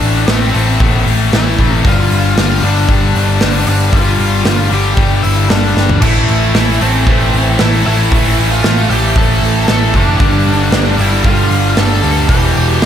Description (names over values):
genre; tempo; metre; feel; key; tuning
quiet-loud alternative rock; 115 BPM; 4/4; straight; A minor; A4 = 440 Hz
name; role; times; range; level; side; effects
octave-fuzz lead guitar; melody; 0.0-12.9 s; C4 to A5; -19 LUFS; equal; distortion, slapback echo
heavy high-gain guitar; riff; 0.0-12.9 s; E2 to A3; -20 LUFS; left 1 dB; distortion, slapback echo
scooped high-gain guitar; riff; 0.0-12.9 s; E2 to A3; -17 LUFS; left 10 dB; distortion, slapback echo
picked electric bass; bass; 0.0-12.9 s; E1 to D2; -14 LUFS; equal; none
big rock drum kit; drums; 0.0-12.9 s; crash cymbal, hi-hat, kick drum, snare drum, splash cymbal, toms; -15 LUFS; right 1 dB; none
heavy high-gain guitar; riff; 6.0-12.9 s; E2 to A3; -18 LUFS; right 11 dB; distortion, slapback echo
room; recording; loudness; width
light reverb, small room ambience; none; -9 LUFS; side -9 dB against mid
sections
0.0-12.9 A section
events
drum fill 5.8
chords
0.0 Am; 1.8 G5; 6.0 Am; 10.2 G5; 12.3 Em